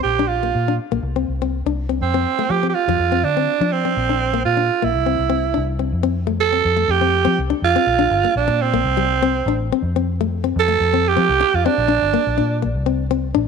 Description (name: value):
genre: highlife guitar band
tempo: 123 BPM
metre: 4/4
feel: straight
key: F major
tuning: A4 = 440 Hz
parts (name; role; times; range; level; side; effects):
- raspy alto saxophone; melody; 0.0-12.6 s; C4 to A4; -18 LUFS; right 9 dB; none
- nylon-string guitar; accompaniment; 0.0-13.5 s; F3 to D4; -23 LUFS; left 15 dB; none
- vintage muted fingered electric bass; bass; 0.0-13.5 s; G1 to F3; -22 LUFS; left 1 dB; none
room: moderate plate reverb, RT60 2.4 s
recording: 1960s-style stereo with parts hard left and right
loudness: -16 LUFS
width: side -6 dB against mid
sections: 0.0-5.9 A section; 5.9-13.5 B section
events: none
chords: 0.1 Bb; 1.0 Csus2; 2.0 F; 3.0 F5; 4.0 Bbadd9; 4.9 C; 5.9 F; 7.9 Bb; 8.9 C5; 9.8 F; 11.8 Bb; 12.7 Amadd11